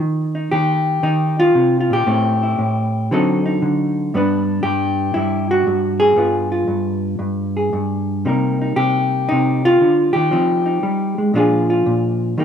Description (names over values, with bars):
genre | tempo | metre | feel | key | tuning
solo jazz | 117 BPM | 4/4 | swing 68% on 8ths, rubato | Eb major | A4 = 440 Hz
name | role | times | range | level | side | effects
hollow-body jazz guitar | solo | 0.0-12.4 s | G2 to B4 | -15 LUFS | equal | none
room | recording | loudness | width
light reverb | recorded outdoors, with no room sound | -15 LUFS | side -8 dB against mid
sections
0.0-12.4 A section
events
none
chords
0.0 Eb; 2.1 Am7; 3.1 D7b9; 4.1 Gmaj7; 6.2 G7b9; 8.3 Cm7; 10.3 Fm9; 11.3 Bb7